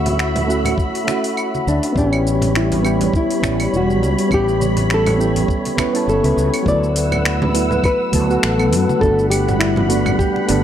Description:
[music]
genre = sunset chillout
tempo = 102 BPM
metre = 4/4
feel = swing 55% on 16ths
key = D major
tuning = A4 = 440 Hz
[part]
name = nylon-string guitar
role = melody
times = 0.0-10.6 s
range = C#4 to D5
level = -21 LUFS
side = left 1 dB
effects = analog delay
[part]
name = soft electric-piano-like synth keys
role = accompaniment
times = 0.0-10.6 s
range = F#3 to B4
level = -21 LUFS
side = moving between left 4 dB and right 4 dB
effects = chorus, auto-pan
[part]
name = soft string machine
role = sustained chords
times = 0.0-10.6 s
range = G3 to E6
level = -22 LUFS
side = equal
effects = ensemble chorus
[part]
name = fretless electric bass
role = bass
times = 0.0-10.6 s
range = E1 to F#2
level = -20 LUFS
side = equal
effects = tube saturation, ensemble chorus
[part]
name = deep house drum kit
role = drums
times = 0.1-10.6 s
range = claves, finger snaps, hi-hat, shaker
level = -24 LUFS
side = equal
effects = overdrive, studio reverb
[part]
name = congas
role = percussion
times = 0.1-10.6 s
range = none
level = -26 LUFS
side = right 2 dB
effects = none
[part]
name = electronic kick drum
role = drums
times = 0.8-10.3 s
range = none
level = -21 LUFS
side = equal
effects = studio reverb
[sound]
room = digital ambience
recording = dry, gritty hardware recording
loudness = -14 LUFS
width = side -10 dB against mid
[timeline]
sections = 0.0-6.7 A section; 6.7-10.6 B section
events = kick drops out 6.1-6.7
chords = 0.0 Dmaj9; 2.0 A9; 6.7 D69; 9.0 Gmaj7

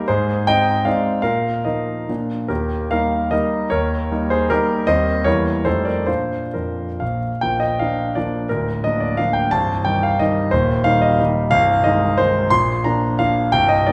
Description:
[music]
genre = classical, romantic triple-time dance for piano with dotted rhythms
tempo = 122-191 BPM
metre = 3/4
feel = rubato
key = Eb major, Bb major from 4.9 s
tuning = A4 = 439 Hz
[part]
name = warm concert grand piano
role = solo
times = 0.0-13.9 s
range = C1 to C6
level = -19 LUFS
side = equal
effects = none
[sound]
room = wet recital hall reverb, RT60 1.5 s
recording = heard from further back in the room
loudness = -19 LUFS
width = mono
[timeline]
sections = 0.0-7.4 A section; 7.4-13.9 B section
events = none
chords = 0.1 Ab; 1.2 Bbsus4; 2.1 Bb; 2.5 Eb; 3.7 Eb7; 4.9 Cm7/Eb; 5.3 Edim7; 5.7 F9; 6.1 Bb; 8.5 Bb/D; 9.5 Cm; 10.5 Cm/Eb; 11.5 Ab/C; 12.5 Bb

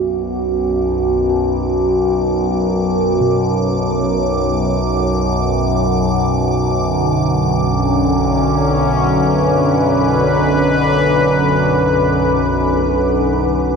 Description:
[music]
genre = dark ambient drone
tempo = free time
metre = none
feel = none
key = unclear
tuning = A4 = 440 Hz
[part]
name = quartz singing bowl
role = arpeggios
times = 0.0-8.7 s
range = B2 to F#4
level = -22 LUFS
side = right 1 dB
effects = ping-pong delay
[part]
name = overtone-sweeping drone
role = drone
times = 0.0-13.8 s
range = B1 to F#2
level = -17 LUFS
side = equal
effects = chorus, built-in reverb
[part]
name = icy glass pad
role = texture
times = 0.4-13.8 s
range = D6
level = -28 LUFS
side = right 2 dB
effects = chorus, built-in reverb
[part]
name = sweeping resonant pad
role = sustained chords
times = 6.6-13.8 s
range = D3 to B4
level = -15 LUFS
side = equal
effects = chorus
[sound]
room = wet huge ambient reverb, RT60 7.8 s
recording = dark, warm production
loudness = -13 LUFS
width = side -5 dB against mid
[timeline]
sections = 0.0-13.8 A section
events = fade-in on ambient pad 0.0-13.8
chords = 0.0 Bmadd9

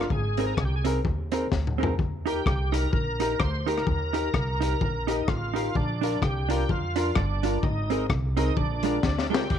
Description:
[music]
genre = ska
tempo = 128 BPM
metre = 4/4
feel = swing 58% on 8ths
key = Eb major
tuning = A4 = 441 Hz
[part]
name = bright tonewheel organ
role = melody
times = 0.0-9.6 s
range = D4 to C5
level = -31 LUFS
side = right 1 dB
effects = overdrive, chorus vibrato, slow rotary speaker, slapback echo
[part]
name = hollow-body jazz guitar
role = accompaniment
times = 0.0-9.5 s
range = Ab3 to Bb4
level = -32 LUFS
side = right 13 dB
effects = none
[part]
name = warm upright piano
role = stabs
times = 0.0-9.4 s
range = C4 to Bb4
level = -33 LUFS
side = left 10 dB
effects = none
[part]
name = upright bass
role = bass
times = 0.0-9.6 s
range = G1 to F2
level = -29 LUFS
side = right 1 dB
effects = tube saturation
[part]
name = crunchy breakbeat drum kit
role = drums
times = 0.0-9.6 s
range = crash cymbal, hi-hat, kick drum, rim click, snare drum, toms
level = -28 LUFS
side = left 3 dB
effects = none
[sound]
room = light reverb, small room ambience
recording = 1960s-style stereo with parts hard left and right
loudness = -24 LUFS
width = side -9 dB against mid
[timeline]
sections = 0.0-9.5 A section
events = drum fill 1.5-2.0, 9.0-9.5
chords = 0.1 Abadd9; 2.0 Eb; 5.8 Bb; 7.6 Abadd9; 8.6 Bb7

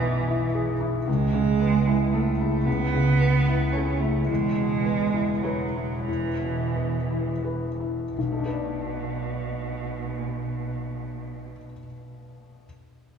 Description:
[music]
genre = neoclassical piano and strings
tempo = 79-114 BPM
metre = 3/4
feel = rubato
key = B dorian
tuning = A4 = 441 Hz
[part]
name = warm cello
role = second line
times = 0.0-11.5 s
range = B2 to C#4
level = -28 LUFS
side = right 5 dB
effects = none
[part]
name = felt-muted upright piano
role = accompaniment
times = 0.0-12.7 s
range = B1 to D5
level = -26 LUFS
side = left 1 dB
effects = none
[part]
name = rich double bass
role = bass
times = 0.0-11.5 s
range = E1 to C#2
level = -32 LUFS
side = right 1 dB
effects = none
[sound]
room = wet cathedral reverb, RT60 4.1 s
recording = recorded in a church or concert hall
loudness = -23 LUFS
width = side -7 dB against mid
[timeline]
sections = 0.0-8.2 A section; 8.2-12.6 B section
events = slowing down 3.5-8.2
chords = 0.0 E/B; 1.1 Aadd9/C#; 4.3 E; 8.2 Bm7

